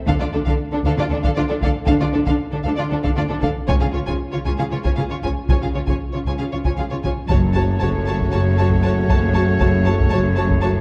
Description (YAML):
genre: cinematic, epic orchestral film score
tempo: 233 BPM (eighths)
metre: 7/8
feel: straight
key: F# harmonic minor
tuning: A4 = 440 Hz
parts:
  - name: rich symphonic violin section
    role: melody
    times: 0.1-10.7 s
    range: A4 to A5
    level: -31 LUFS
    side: equal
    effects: none
  - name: clear symphonic violin section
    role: second line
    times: 0.1-10.7 s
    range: D4 to C#5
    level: -32 LUFS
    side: equal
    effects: none
  - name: warm symphonic viola section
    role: accompaniment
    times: 0.1-10.7 s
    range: D4 to F#4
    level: -28 LUFS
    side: equal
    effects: none
  - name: rich symphonic cello section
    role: bass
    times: 0.1-10.8 s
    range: F#2 to D3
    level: -25 LUFS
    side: equal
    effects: none
  - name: rich symphonic double bass section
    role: bass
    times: 0.1-10.8 s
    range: F#1 to D2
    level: -27 LUFS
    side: equal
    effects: none
  - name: taiko ensemble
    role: drums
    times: 0.1-10.8 s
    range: none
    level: -25 LUFS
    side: equal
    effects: none
  - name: mellow trombone section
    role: sustained chords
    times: 7.3-10.8 s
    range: C#3 to A3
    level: -30 LUFS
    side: equal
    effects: none
  - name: rich symphonic string section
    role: sustained chords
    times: 7.3-10.8 s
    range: C#4 to C#5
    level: -32 LUFS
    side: equal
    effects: none
  - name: warm French horn section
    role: sustained chords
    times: 7.3-10.8 s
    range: C#4 to F#4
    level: -32 LUFS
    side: equal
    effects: none
  - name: bright trumpet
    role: stabs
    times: 7.3-10.8 s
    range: C#5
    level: -30 LUFS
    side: equal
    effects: none
room: wet recital hall reverb, RT60 1.5 s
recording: dark, warm production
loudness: -19 LUFS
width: mono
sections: 0.0-7.3 A section; 7.3-10.8 B section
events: none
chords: 0.1 Dm; 3.7 C#; 7.3 F#m